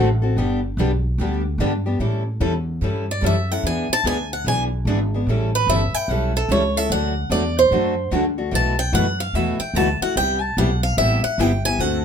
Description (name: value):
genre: acoustic string swing (jazz manouche)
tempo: 147 BPM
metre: 4/4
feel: swing 64% on 8ths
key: unclear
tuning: A4 = 440 Hz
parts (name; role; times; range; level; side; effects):
- picked swing-style acoustic guitar; melody; 0.0-0.3, 3.1-12.0 s; A4 to A5; -21 LUFS; right 1 dB; none
- picked steel-string acoustic guitar; accompaniment; 0.0-12.0 s; B2 to A4; -24 LUFS; left 4 dB; none
- picked steel-string acoustic guitar; accompaniment; 0.0-12.0 s; B2 to B4; -28 LUFS; right 4 dB; none
- upright bass; bass; 0.0-12.0 s; G1 to A2; -22 LUFS; equal; none
room: moderate small room reverb, RT60 0.5 s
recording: minimal, uncompressed stereo recording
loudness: -18 LUFS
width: side -7 dB against mid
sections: 0.0-2.0 A section; 2.0-12.0 A section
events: steel-string acoustic guitar solo 0.0-12.0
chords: 0.4 G; 2.0 A7; 3.6 E7; 5.3 A7; 6.9 D; 8.5 B7sus4; 10.2 Cmaj7